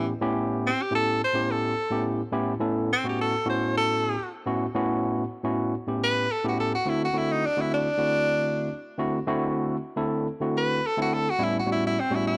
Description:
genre	blues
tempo	106 BPM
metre	4/4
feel	swing 54% on 16ths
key	A mixolydian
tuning	A4 = 441 Hz
part	clear tenor saxophone	melody	0.0-12.4 s	C4 to C5	-28 LUFS	equal	none
part	overdriven tine electric piano	accompaniment	0.0-12.4 s	A2 to A4	-29 LUFS	equal	none
room	light reverb, small room ambience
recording	none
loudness	-26 LUFS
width	mono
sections	0.0-12.4 A section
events	tenor saxophone solo 0.0-12.4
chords	0.0 A9; 6.9 D9; 11.4 A9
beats	| 0.06 0.63 1.20 1.76 | 2.33 2.89 3.46 4.03 | 4.59 5.16 5.72 6.29 | 6.86 7.42 7.99 8.56 | 9.12 9.69 10.26 10.82 | 11.39 11.96

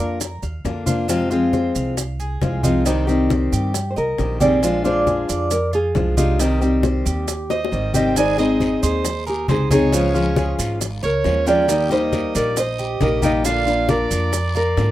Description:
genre	latin, Cuban son and guajira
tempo	136 BPM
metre	4/4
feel	straight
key	unclear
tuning	A4 = 439 Hz
part	fingerpicked steel-string acoustic guitar	accompaniment	0.0-14.9 s	C3 to Ab4	-20 LUFS	left 3 dB	none
part	Cuban tres	arpeggios	0.0-14.9 s	Db4 to F5	-28 LUFS	right 3 dB	none
part	upright bass	bass	0.0-14.9 s	Ab1 to Ab2	-23 LUFS	right 1 dB	none
part	bongos	percussion	0.2-14.9 s	none	-29 LUFS	left 9 dB	none
part	congas	percussion	0.2-14.9 s	none	-25 LUFS	equal	none
part	maracas	percussion	0.2-14.9 s	none	-30 LUFS	right 10 dB	none
part	nylon-string guitar	melody	3.9-14.9 s	G4 to Eb5	-22 LUFS	right 2 dB	none
part	bright soprano saxophone	second line	7.5-14.9 s	Bb4 to Ab5	-25 LUFS	right 5 dB	none
part	guiro	percussion	8.2-14.9 s	none	-38 LUFS	left 5 dB	none
room	light reverb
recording	rough home demo mix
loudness	-17 LUFS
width	side -14 dB against mid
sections	0.0-14.9 A section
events	drum fill 7.5-8.2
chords	0.0 Bb; 1.1 Fm; 2.9 Cm; 4.6 Bb7; 6.4 Cm; 8.2 Ab; 9.9 Db; 11.7 Eb; 13.5 Bb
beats	0.21 0.65 | 1.09 1.53 1.98 2.42 | 2.86 3.30 3.74 4.19 | 4.63 5.07 5.51 5.95 | 6.40 6.84 7.28 7.72 | 8.16 8.60 9.04 9.49 | 9.93 10.37 10.81 11.25 | 11.69 12.13 12.57 13.01 | 13.45 13.89 14.33 14.77

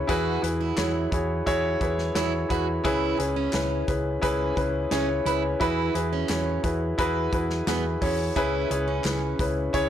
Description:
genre	piano-driven pop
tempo	87 BPM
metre	4/4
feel	straight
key	unclear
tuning	A4 = 439 Hz
part	warm concert grand piano	accompaniment	0.0-9.9 s	C#3 to C#5	-25 LUFS	left 1 dB	none
part	hollow-body short-scale fingered electric bass	bass	0.0-9.9 s	C#2 to E2	-30 LUFS	equal	none
part	fingerpicked plugged-in steel-string acoustic guitar	riff	0.1-9.4 s	B3 to F#4	-31 LUFS	right 10 dB	none
part	natural country drum kit	drums	0.1-9.9 s	hi-hat, kick drum, snare drum	-31 LUFS	equal	none
part	group handclap	percussion	0.8-9.2 s	none	-39 LUFS	left 2 dB	none
room	moderate large studio reverb, RT60 0.9 s, small room ambience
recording	blown-out, overdriven recording, overdrive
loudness	-23 LUFS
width	side -10 dB against mid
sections	0.0-9.9 A section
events	none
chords	0.1 Eadd9; 2.8 C#m7; 5.6 Eadd9; 8.4 C#m7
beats	| 0.09 0.78 1.47 2.16 | 2.85 3.54 4.22 4.91 | 5.60 6.29 6.98 7.67 | 8.36 9.05 9.74

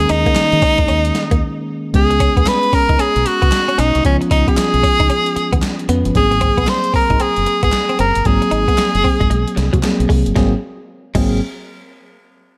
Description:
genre	R&B, new jack swing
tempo	114 BPM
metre	4/4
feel	swing 63% on 16ths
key	G# dorian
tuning	A4 = 440 Hz
part	bright tenor saxophone	melody	0.0-9.8 s	C#4 to B#4	-19 LUFS	equal	none
part	bell-like tine electric piano	accompaniment	0.0-11.4 s	D#3 to B4	-23 LUFS	equal	none
part	deep dub fingered electric bass	bass	0.0-11.4 s	F#1 to D#3	-21 LUFS	equal	none
part	boom bap sampler-style drum kit	drums	0.0-11.3 s	crash cymbal, handclaps, hi-hat, kick drum, snare drum, tambourine	-21 LUFS	equal	none
part	direct-recorded clean electric guitar	riff	0.1-11.3 s	F#3 to D#4	-27 LUFS	equal	analog chorus
room	light reverb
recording	none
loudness	-15 LUFS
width	mono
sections	0.0-1.9 A section; 1.9-10.4 B section; 10.4-12.5 C section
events	break 1.4-1.9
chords	0.0 D#7sus4; 1.9 C#7; 6.1 G#9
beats	0.36 0.89 1.41 | 1.94 2.46 2.99 3.52 | 4.04 4.57 5.10 5.62 | 6.15 6.68 7.20 7.73 | 8.26 8.78 9.31 9.83 | 10.36 10.89

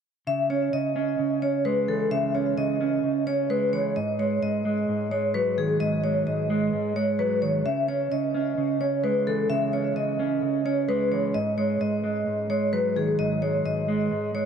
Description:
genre	hip hop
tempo	130 BPM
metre	4/4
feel	half-time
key	C# minor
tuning	A4 = 443 Hz
part	vibraphone with medium mallets	melody	0.3-14.5 s	G#4 to E5	-26 LUFS	left 2 dB	tape echo
part	mellow electric guitar	accompaniment	0.3-14.5 s	G#2 to C#4	-26 LUFS	right 3 dB	spring reverb
room	light reverb, small room reverb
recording	dark, warm production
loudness	-23 LUFS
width	side -7 dB against mid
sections	0.3-14.5 A section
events	none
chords	0.3 C#m; 4.0 G#5; 7.7 C#m; 11.3 G#5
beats	| 0.27 0.73 1.19 1.65 | 2.12 2.58 3.04 3.50 | 3.96 4.42 4.88 5.34 | 5.81 6.27 6.73 7.19 | 7.65 8.12 8.58 9.04 | 9.50 9.96 10.42 10.88 | 11.35 11.81 12.27 12.73 | 13.19 13.65 14.12

